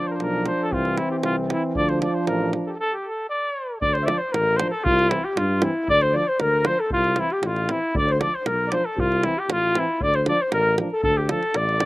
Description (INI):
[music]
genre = balkan folk, Balkan brass band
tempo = 116 BPM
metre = 2/4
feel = straight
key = D minor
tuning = A4 = 439 Hz
[part]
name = clear flugelhorn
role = melody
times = 0.0-11.9 s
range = E4 to E5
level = -23 LUFS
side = equal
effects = slapback echo
[part]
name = warm euphonium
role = accompaniment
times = 0.0-11.9 s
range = E3 to F3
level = -29 LUFS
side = right 4 dB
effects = slapback echo
[part]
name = warm trombone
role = accompaniment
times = 0.0-11.9 s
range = C4 to D4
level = -30 LUFS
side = left 3 dB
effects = slapback echo
[part]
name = mellow tuba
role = bass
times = 0.2-11.8 s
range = A1 to G2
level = -26 LUFS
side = equal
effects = none
[part]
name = davul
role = percussion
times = 0.2-11.9 s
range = none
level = -28 LUFS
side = right 2 dB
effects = none
[part]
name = mellow clarinet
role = second line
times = 3.8-11.9 s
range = E4 to E5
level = -25 LUFS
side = left 2 dB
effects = slapback echo
[sound]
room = light reverb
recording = recorded outdoors, with no room sound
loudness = -20 LUFS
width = side -19 dB against mid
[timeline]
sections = 0.0-3.8 A section; 3.8-11.9 A section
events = stop 2.8-3.8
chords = 0.0 Dm; 0.7 C; 1.8 Dm; 2.8 N.C.; 3.8 Dm; 4.8 C; 5.9 Dm; 6.9 C; 7.9 Dm; 9.0 C; 10.0 Dm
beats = 0.20 | 0.72 1.24 | 1.75 2.27 | 2.79 3.30 | 3.82 4.33 | 4.85 5.37 | 5.88 6.40 | 6.91 7.43 | 7.94 8.46 | 8.97 9.49 | 10.01 10.52 | 11.04 11.56